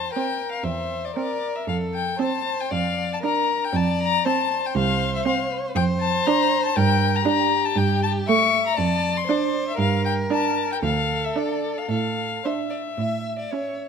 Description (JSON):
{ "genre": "quick classical-period movement for string quartet", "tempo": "117 BPM", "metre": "4/4", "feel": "rubato", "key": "F major, D minor from 5.8 s", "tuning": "A4 = 444 Hz", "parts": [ { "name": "rich violin", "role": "melody", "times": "0.0-13.8 s", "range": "D5 to C#6", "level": "-24 LUFS", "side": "left 9 dB", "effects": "none" }, { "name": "rich violin", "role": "second line", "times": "0.0-13.9 s", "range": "G4 to E5", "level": "-28 LUFS", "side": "equal", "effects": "none" }, { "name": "clear cello", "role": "bass", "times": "0.0-13.4 s", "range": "C2 to A2", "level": "-25 LUFS", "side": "right 4 dB", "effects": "none" }, { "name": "warm viola", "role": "accompaniment", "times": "0.2-13.9 s", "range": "A3 to D4", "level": "-27 LUFS", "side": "right 8 dB", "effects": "none" } ], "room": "moderate concert hall reverb, RT60 2.1 s", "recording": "close, detailed microphones", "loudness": "-20 LUFS", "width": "side -6 dB against mid", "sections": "0.0-13.9 A section", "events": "none", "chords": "0.0 C7; 1.7 F; 2.7 Bb/F; 3.7 F5; 5.8 Dm/F; 6.8 Gm; 7.8 A5/G; 8.8 Dm/F; 9.8 Gm; 10.8 D5; 11.9 Asus4; 13.0 A" }